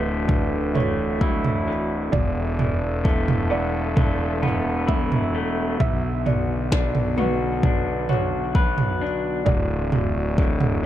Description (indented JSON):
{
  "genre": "post-rock",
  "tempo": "65 BPM",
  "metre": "4/4",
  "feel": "straight",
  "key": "D major",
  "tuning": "A4 = 438 Hz",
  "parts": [
    { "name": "warm analog pad", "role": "sustained chords", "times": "0.0-10.9 s", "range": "D3 to A4", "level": "-32 LUFS", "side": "right 1 dB", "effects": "chorus" },
    { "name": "electric guitar through a small old amp", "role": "arpeggios", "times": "0.0-10.9 s", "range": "D2 to B4", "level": "-27 LUFS", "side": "left 2 dB", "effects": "tape echo" },
    { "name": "felt-muted upright piano", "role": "arpeggios", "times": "0.0-10.9 s", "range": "B4 to E5", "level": "-31 LUFS", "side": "right 5 dB", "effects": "tape echo" },
    { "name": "fuzz fingered electric bass", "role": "bass", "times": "0.0-10.9 s", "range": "D1 to B1", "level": "-25 LUFS", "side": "left 1 dB", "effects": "overdrive" },
    { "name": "minimal click drum kit", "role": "drums", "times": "0.3-10.8 s", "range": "kick drum, snare drum, toms", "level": "-22 LUFS", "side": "equal", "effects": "overdrive" }
  ],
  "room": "little or no reverb",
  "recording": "dark, warm production",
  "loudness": "-20 LUFS",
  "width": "side -12 dB against mid",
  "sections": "0.0-10.9 A section",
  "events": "none",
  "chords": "0.0 Dadd9; 2.1 Esus4; 5.8 Bm; 9.5 Dadd9"
}